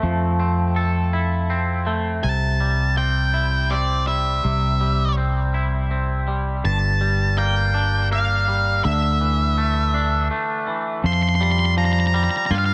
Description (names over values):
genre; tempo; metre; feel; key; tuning
post-rock; 82 BPM; 3/4; straight; unclear; A4 = 439 Hz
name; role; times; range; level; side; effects
twangy electric guitar; arpeggios; 0.0-12.7 s; G2 to A4; -28 LUFS; equal; lush chorus, tape echo
fingered electric bass; bass; 0.0-12.7 s; G1 to G2; -23 LUFS; equal; none
octave-fuzz lead guitar; melody; 2.2-12.7 s; D5 to C6; -25 LUFS; equal; distortion, tape echo
room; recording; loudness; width
light reverb, digital ambience; none; -21 LUFS; mono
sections
0.0-2.2 A section; 2.2-11.0 B section; 11.0-12.7 C section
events
break 10.3-11.0; build-up 11.0-12.7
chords
0.0 Fmaj7; 2.2 C; 6.6 Gm; 8.8 Dsus2; 11.0 Fsus2